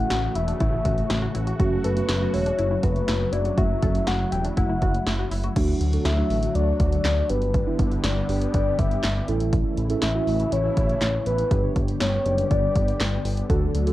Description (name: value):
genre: synth-pop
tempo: 121 BPM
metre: 4/4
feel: straight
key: unclear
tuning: A4 = 440 Hz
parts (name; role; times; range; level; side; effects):
- soft octave-layered synth lead; melody; 0.0-13.2 s; B4 to G5; -27 LUFS; left 2 dB; chorus, tape echo
- muted felt-like synth keys; accompaniment; 0.0-13.9 s; A3 to D5; -30 LUFS; right 5 dB; chorus
- sweeping resonant pad; sustained chords; 0.0-13.9 s; C#3 to G4; -30 LUFS; left 1 dB; chorus
- smooth synth bass; bass; 0.0-13.9 s; E1 to D2; -25 LUFS; equal; transformer saturation
- analog pluck; arpeggios; 0.1-5.5 s; D4 to A4; -35 LUFS; left 2 dB; chorus, tape echo
- punchy analog drum machine; drums; 0.1-13.9 s; crash cymbal, handclaps, hi-hat, kick drum, snare drum; -25 LUFS; equal; none
room: light reverb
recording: worn, warbling old tape, cassette tape, warbly pitch drift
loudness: -20 LUFS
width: side -15 dB against mid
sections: 0.0-5.6 A section; 5.6-13.9 B section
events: none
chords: 0.0 A; 5.6 D; 7.3 G; 9.3 A; 11.5 G